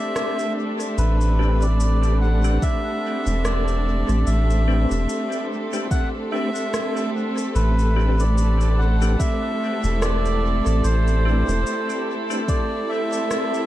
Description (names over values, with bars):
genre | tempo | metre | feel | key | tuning
ambient dub | 73 BPM | 4/4 | swing 56% on 16ths | A minor | A4 = 442 Hz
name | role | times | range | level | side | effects
melodica | melody | 0.0-13.7 s | B4 to F#5 | -27 LUFS | equal | dub echo
warm studio string section | sustained chords | 0.0-13.7 s | A3 to A4 | -26 LUFS | right 1 dB | none
electronic rim click and shaker | drums | 0.2-13.7 s | none | -32 LUFS | left 1 dB | dub echo
soft dub sub bass | bass | 1.0-11.6 s | E1 to A1 | -19 LUFS | equal | none
percussive tonewheel organ | stabs | 1.4-12.4 s | A3 to B4 | -31 LUFS | left 2 dB | chorus vibrato, fast rotary speaker, dub echo
electronic kick drum | drums | 2.6-12.7 s | none | -22 LUFS | equal | none
drifting glass-harmonics texture | texture | 8.6-13.7 s | A4 | -32 LUFS | right 6 dB | chorus, built-in reverb
room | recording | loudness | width
digital ambience | echo-heavy mix | -19 LUFS | side -14 dB against mid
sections
0.0-13.7 A section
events
none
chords
0.0 Am11